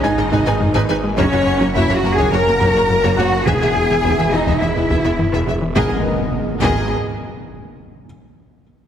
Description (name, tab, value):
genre	cinematic, hybrid orchestral and electronic film score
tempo	105 BPM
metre	4/4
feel	straight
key	G# minor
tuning	A4 = 440 Hz
part	clear symphonic violin section	melody	0.0-6.9 s	A#4 to G#5	-28 LUFS	left 3 dB	none
part	rich symphonic violin section	second line	0.0-6.9 s	C#5 to A#5	-25 LUFS	left 4 dB	none
part	rich symphonic viola section	accompaniment	0.0-6.9 s	A#3 to B4	-26 LUFS	right 1 dB	none
part	dark French horn section	sustained chords	0.0-6.0 s	G#3 to A#4	-23 LUFS	left 4 dB	none
part	warm analog pad	sustained chords	0.0-6.1 s	A#2 to F#5	-26 LUFS	right 1 dB	chorus
part	soft round pluck	arpeggios	0.0-5.6 s	E3 to G#4	-30 LUFS	equal	none
part	tight sequencer bass	riff	0.0-5.7 s	E2 to G#3	-24 LUFS	left 2 dB	none
part	phased detuned saw bass	bass	0.0-6.9 s	E1 to G#1	-27 LUFS	equal	phaser
part	rich symphonic double bass section	bass	0.0-6.9 s	E1 to G#1	-23 LUFS	right 3 dB	none
part	warm symphonic cello section	bass	0.0-6.9 s	C#4 to A#4	-21 LUFS	right 2 dB	none
part	felt-muted upright piano	texture	0.0-5.8 s	F#5 to A#6	-28 LUFS	equal	none
part	taiko ensemble	drums	0.2-7.7 s	none	-25 LUFS	equal	none
part	impact	sound effects	5.8-8.0 s	none	-24 LUFS	left 1 dB	none
room	moderate scoring stage reverb, RT60 2.0 s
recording	heavily compressed radio sound, faint mains hum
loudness	-14 LUFS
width	side -9 dB against mid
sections	0.0-5.8 A section; 5.8-8.0 B section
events	impact 5.8-8.0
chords	0.0 G#madd9; 1.2 F#; 3.5 E; 5.8 G#madd9